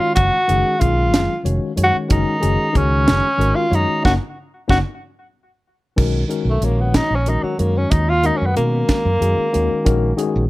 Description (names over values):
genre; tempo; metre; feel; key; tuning
electric jazz fusion; 62 BPM (dotted quarters); 6/8; straight; unclear; A4 = 440 Hz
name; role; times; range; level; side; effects
clear tenor saxophone; melody; 0.0-10.5 s; F#3 to F#4; -19 LUFS; equal; none
tine electric piano; accompaniment; 0.0-10.4 s; D#3 to C#5; -22 LUFS; left 3 dB; medium stereo tremolo
fretless electric bass; bass; 0.2-10.5 s; E#1 to B2; -19 LUFS; equal; ensemble chorus
crisp fusion drum kit; drums; 0.2-10.3 s; crash cymbal, hi-hat, kick drum, snare drum; -20 LUFS; equal; none
room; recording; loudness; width
light reverb; none; -15 LUFS; side -18 dB against mid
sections
0.0-6.0 A section; 6.0-10.5 B section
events
band accent 4.0-6.0; tenor saxophone solo 6.0-10.5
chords
0.0 C#7sus4; 2.1 D#m7/F#; 6.0 Bmaj9; 9.9 F#add9